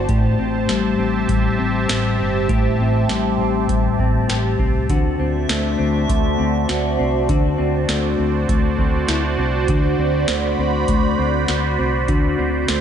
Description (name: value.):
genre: dream pop.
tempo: 100 BPM.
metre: 4/4.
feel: straight.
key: unclear.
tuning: A4 = 437 Hz.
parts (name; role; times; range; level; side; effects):
phased analog pad; sustained chords; 0.0-12.8 s; F#4 to B5; -23 LUFS; right 4 dB; phaser, chorus.
semi-hollow electric guitar; arpeggios; 0.0-12.8 s; A2 to G4; -20 LUFS; left 4 dB; wide subtle chorus, digital delay.
vintage muted fingered electric bass; bass; 0.0-12.8 s; G1 to D2; -23 LUFS; right 1 dB; none.
booming analog drum machine; drums; 0.1-12.8 s; hi-hat, kick drum, snare drum; -22 LUFS; right 1 dB; none.
drifting glass-harmonics texture; texture; 5.3-6.2, 12.5-12.8 s; C5 to E5; -31 LUFS; left 1 dB; chorus, built-in reverb, digital delay.
room: moderate huge ambient reverb, RT60 5.0 s.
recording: nothing above 10.3 kHz.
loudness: -16 LUFS.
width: side -8 dB against mid.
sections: 0.0-12.8 A section.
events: none.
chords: 0.1 Am7; 4.9 D7.